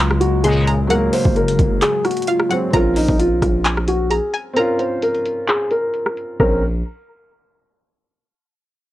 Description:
hip hop, trap; 131 BPM; 4/4; half-time; Bb minor; A4 = 438 Hz
dark concert grand piano; melody; 0.0-6.6 s; Eb4 to C5; -19 LUFS; equal; cassette tape
string-like resonator pluck; second line; 0.0-6.6 s; F5 to C6; -24 LUFS; equal; chorus, cassette tape, analog delay
felt-muted upright piano; accompaniment; 0.0-6.6 s; Gb3 to Bb4; -24 LUFS; right 1 dB; cassette tape
warbly tape-like pad; sustained chords; 0.0-2.7 s; Db3 to Bb3; -26 LUFS; left 2 dB; chorus, built-in reverb, cassette tape
distorted 808-style bass; bass; 0.0-6.8 s; Gb1 to Db2; -20 LUFS; equal; distortion
trap drum kit; drums; 0.1-6.5 s; crash cymbal, handclaps, hi-hat, kick drum, rim click; -21 LUFS; equal; cassette tape
resonant sweep polysynth; stabs; 0.4-0.6 s; Bb2 to Ab3; -20 LUFS; left 1 dB; chorus, cassette tape
little or no reverb; home recording on cassette, low-pass filter; -15 LUFS; side -15 dB against mid
0.0-2.7 A section; 2.7-6.4 B section; 6.4-8.2 C section
break 1.8-2.7, 4.6-6.4
0.0 Gbadd9; 2.7 Bbmadd9

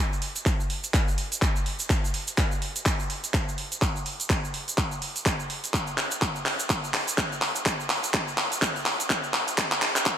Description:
house; 125 BPM; 4/4; swing 58% on 16ths
egg shaker; percussion; 0.1-10.2 s; -34 LUFS; right 4 dB
house drum kit; drums; 0.2-10.2 s; handclaps, hi-hat; -26 LUFS; equal
electronic kick drum; drums; 0.5-10.2 s; -27 LUFS; equal
moderate plate reverb, RT60 2.2 s; dreamy mix soaked in reverb, high-pass filter; -24 LUFS; side -9 dB against mid
0.0-10.2 A section
build-up 0.0-10.2; drum fill 0.0-10.2; filter sweep 0.0-10.2

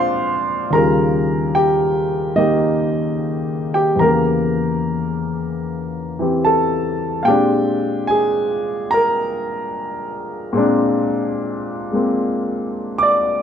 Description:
solo jazz; 73 BPM; 4/4; swing 69% on 8ths; Bb mixolydian; A4 = 440 Hz
warm grand piano; solo; 0.0-13.4 s; Eb2 to D6; -16 LUFS; equal
moderate club reverb, RT60 0.7 s; -16 LUFS; side -8 dB against mid
0.0-13.4 A section
0.0 Bb9; 0.7 Eb9; 4.0 Edim7; 7.3 Bb9

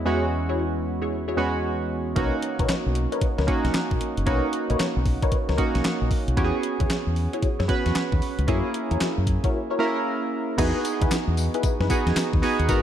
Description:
R&B, new jack swing; 114 BPM; 4/4; swing 64% on 16ths; A4 = 439 Hz
warm analog keys; accompaniment; 0.0-12.8 s; E2 to B4; -26 LUFS; right 2 dB; chorus
funky polysynth comp; stabs; 0.1-12.8 s; D#4 to C#5; -30 LUFS; left 3 dB; chorus, ping-pong delay
deep dub fingered electric bass; bass; 2.2-12.8 s; F#1 to F#2; -25 LUFS; equal
crisp 8-bit digital drum machine; drums; 2.2-12.8 s; crash cymbal, handclaps, hi-hat, kick drum, snare drum, tambourine; -26 LUFS; equal
light reverb; dark, warm production; -22 LUFS; side -10 dB against mid
0.0-10.6 A section; 10.6-12.8 B section
0.0 E69; 2.2 Bmaj9; 6.4 E69; 8.5 F#7; 10.6 Emaj7

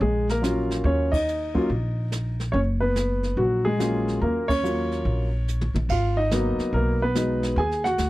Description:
jazz piano trio; 143 BPM; 4/4; swing 65% on 8ths; Eb minor; A4 = 440 Hz
warm grand piano; melody; 0.0-8.1 s; Gb3 to Ab5; -24 LUFS; equal
upright bass; bass; 0.0-8.1 s; Gb1 to Eb2; -26 LUFS; equal
jazz brush drum kit; drums; 0.0-8.1 s; brushed snare drum, crash cymbal, hi-hat, kick drum, ride cymbal, snare drum, toms; -31 LUFS; right 1 dB
little or no reverb; dry, close 1970s-style studio recording; -21 LUFS; side -17 dB against mid
0.0-8.1 A section
band accent 1.1, 4.4; drum fill 5.5-5.9
0.0 Ebm9; 5.9 Abm9; 7.6 Ebm

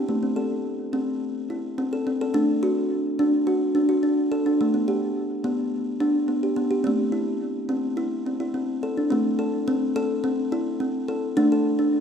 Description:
world meditative, meditative tuned percussion; 106 BPM; 4/4; straight; A dorian; A4 = 440 Hz
kalimba; solo; 0.0-12.0 s; A3 to A4; -22 LUFS; equal; diffuse ambient delay
wet recital hall reverb, RT60 1.7 s; -22 LUFS; side -7 dB against mid
0.0-9.1 A section; 9.1-12.0 B section
0.1 Am; 2.3 D/A; 4.6 G/A; 6.9 Am; 11.4 D5/A

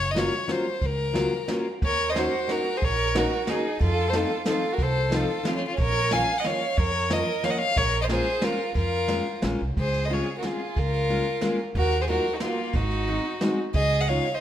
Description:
musette waltz; 181 BPM; 3/4; straight; Bb minor, Db major from 9.8 s; A4 = 441 Hz
rich violin; melody; 0.0-14.4 s; F4 to Ab5; -27 LUFS; left 3 dB
upright bass; bass; 0.0-14.2 s; Gb1 to F2; -28 LUFS; right 1 dB
picked steel-string acoustic guitar; accompaniment; 0.1-14.3 s; F3 to Gb4; -29 LUFS; left 2 dB
jazz brush drum kit; drums; 0.2-14.2 s; kick drum, ride cymbal, snare drum; -31 LUFS; right 1 dB
rich violin; second line; 1.8-14.4 s; Bb3 to F5; -30 LUFS; right 6 dB
moderate recital hall reverb, RT60 1.2 s; minimal, uncompressed stereo recording; -22 LUFS; side -10 dB against mid
0.0-9.8 A section; 9.8-14.4 B section
0.0 Gbmaj7; 1.8 Ebm7; 3.8 F7; 5.8 Bbm; 7.8 Bbm7; 9.8 Dbmaj7; 10.8 Bbm7/Db; 11.7 Ebmadd9; 12.7 Ab7; 13.7 Dbadd9

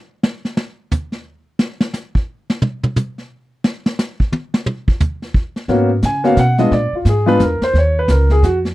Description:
jazz piano trio; 176 BPM; 3/4; swing 62% on 8ths; A4 = 442 Hz
vintage brush drum kit; drums; 0.2-8.7 s; brushed snare drum, hi-hat, kick drum, snare drum, toms; -18 LUFS; equal
warm concert grand piano; melody; 5.7-8.6 s; Ab3 to Ab5; -15 LUFS; left 1 dB
upright bass; bass; 5.7-8.7 s; Db2 to Db3; -15 LUFS; equal
little or no reverb; dry, close 1970s-style studio recording; -15 LUFS; side -17 dB against mid
0.0-5.7 A section; 5.7-8.7 B section
drum solo 0.0-5.7
0.0 N.C.; 5.7 Abm11; 6.7 Bb7b9; 7.7 Ebsus2

